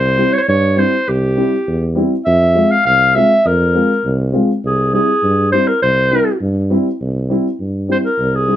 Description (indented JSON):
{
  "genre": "klezmer",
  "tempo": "101 BPM",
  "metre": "2/4",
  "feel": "straight",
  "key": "C phrygian dominant",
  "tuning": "A4 = 440 Hz",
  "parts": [
    { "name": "warm clarinet", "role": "melody", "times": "0.0-8.6 s", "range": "G4 to F5", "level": "-14 LUFS", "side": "equal", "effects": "none" },
    { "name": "warm tuba", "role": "bass", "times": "0.0-8.5 s", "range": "C2 to G2", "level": "-17 LUFS", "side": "right 1 dB", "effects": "none" },
    { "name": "dark upright piano", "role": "accompaniment", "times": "0.2-8.6 s", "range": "G3 to F4", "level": "-17 LUFS", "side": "left 1 dB", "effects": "none" }
  ],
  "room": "moderate studio reverb, RT60 0.6 s",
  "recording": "none",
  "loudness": "-12 LUFS",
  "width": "side -11 dB against mid",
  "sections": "0.0-7.0 A section; 7.0-8.6 B section",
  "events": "clarinet solo 7.0-8.6",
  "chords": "0.0 C; 2.3 Fm; 4.6 C",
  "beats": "0.48 | 1.07 1.67 | 2.26 2.85 | 3.44 4.04 | 4.63 5.22 | 5.82 6.41 | 7.00 7.59 | 8.18"
}